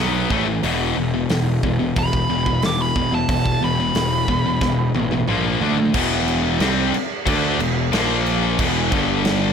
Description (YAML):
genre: heavy metal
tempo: 91 BPM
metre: 4/4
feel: straight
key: E phrygian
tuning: A4 = 440 Hz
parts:
  - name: high-gain distorted guitar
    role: riff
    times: 0.0-9.5 s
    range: E2 to D4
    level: -22 LUFS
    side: left 9 dB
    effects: distortion
  - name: sludgy distorted guitar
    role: riff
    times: 0.0-9.5 s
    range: E2 to D4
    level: -25 LUFS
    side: right 12 dB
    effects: overdrive
  - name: fuzz picked electric bass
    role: bass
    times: 0.0-9.5 s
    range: E1 to D2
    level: -24 LUFS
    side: right 1 dB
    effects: overdrive, transformer saturation
  - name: big rock drum kit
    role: drums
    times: 0.3-9.4 s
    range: crash cymbal, hi-hat, kick drum, snare drum, toms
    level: -24 LUFS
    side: right 1 dB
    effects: none
  - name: dark smooth lead guitar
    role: melody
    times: 2.0-4.9 s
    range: A5 to D6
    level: -24 LUFS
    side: right 3 dB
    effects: overdrive, tape echo
room: studio ambience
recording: blown-out, overdriven recording, overdrive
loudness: -17 LUFS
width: side -7 dB against mid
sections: 0.0-5.9 A section; 5.9-9.5 B section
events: lead electric guitar solo 0.0-5.9; drum fill 4.6-5.9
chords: 0.3 A5; 0.6 E5; 5.3 A#5; 5.6 D5; 5.9 Em; 7.9 A#5; 8.6 E5; 8.9 G5